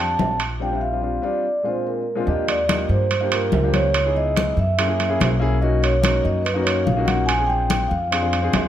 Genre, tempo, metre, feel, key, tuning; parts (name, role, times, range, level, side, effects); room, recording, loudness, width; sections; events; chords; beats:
Afro-Cuban jazz; 144 BPM; 4/4; straight; A4 = 440 Hz
vibraphone with soft mallets; melody; 0.0-8.5 s; Bb4 to A5; -23 LUFS; right 1 dB
warm grand piano; accompaniment; 0.0-8.7 s; Bb2 to Ab4; -25 LUFS; left 3 dB
upright bass; bass; 0.0-8.7 s; Bb1 to G2; -23 LUFS; equal
congas; percussion; 0.2-8.7 s; -26 LUFS; left 3 dB
timbales; percussion; 0.2-8.7 s; -26 LUFS; right 5 dB
moderate large studio reverb, RT60 1.4 s; -18 LUFS; side -11 dB against mid
0.0-2.3 A section; 2.3-8.7 B section
break 0.6-2.3
0.0 Bb69; 1.4 Bb7; 2.3 Ebmaj9; 3.9 Dbm7; 4.8 Gb7; 5.6 Bmaj9; 7.3 Bb7
0.18 | 0.60 1.02 1.44 1.86 | 2.27 2.69 3.11 3.53 | 3.94 4.36 4.78 5.20 | 5.62 6.03 6.45 6.87 | 7.28 7.70 8.12 8.54